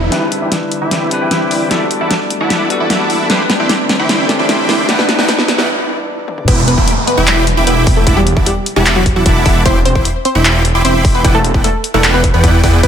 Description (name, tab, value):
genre	future bass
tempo	151 BPM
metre	4/4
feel	half-time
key	E minor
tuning	A4 = 442 Hz
part	wide unison pluck	melody	0.0, 6.5-12.9 s	F#3 to C5	-17 LUFS	equal	sidechain pumping, ping-pong delay
part	bell-like tine electric piano	accompaniment	0.0-6.5 s	G3 to B4	-19 LUFS	left 3 dB	sidechain pumping, ping-pong delay
part	airy breathy pad	sustained chords	0.0-6.5 s	D3 to D5	-26 LUFS	right 2 dB	chorus, sidechain pumping
part	wide detuned saw bass	bass	0.0-12.9 s	E1 to E2	-16 LUFS	equal	chorus, sidechain pumping, high-pass filter
part	riser and downlifter	sound effects	0.0-9.7 s	none	-22 LUFS	right 1 dB	none
part	dense compressed supersaw	riff	0.1-12.9 s	E4 to D6	-16 LUFS	right 1 dB	sidechain pumping, low-pass filter, ping-pong delay
part	big-room dance drum kit	drums	0.1-12.9 s	crash cymbal, handclaps, hi-hat, snare drum, toms	-16 LUFS	equal	none
part	electronic kick drum	drums	6.5-12.9 s	none	-14 LUFS	equal	none
room	light reverb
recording	high-pass filter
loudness	-10 LUFS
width	side -8 dB against mid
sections	0.1-6.5 A section; 6.5-12.9 B section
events	build-up 0.1-6.5; drum fill 0.1-5.7, 6.3; filter sweep on supersaw synth 0.1-6.5; break 5.7-6.5; drop 6.5-12.9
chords	0.1 Cmaj9/E; 1.7 Gmaj9/E; 3.3 Am11/E; 4.9 Em7; 8.1 Gmaj9/E; 9.7 Cmaj9/E; 11.2 Em7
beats	| 0.12 0.52 0.91 1.31 | 1.71 2.11 2.50 2.90 | 3.30 3.70 4.09 4.49 | 4.89 5.29 5.68 6.08 | 6.48 6.88 7.27 7.67 | 8.07 8.46 8.86 9.26 | 9.66 10.05 10.45 10.85 | 11.25 11.64 12.04 12.44 | 12.84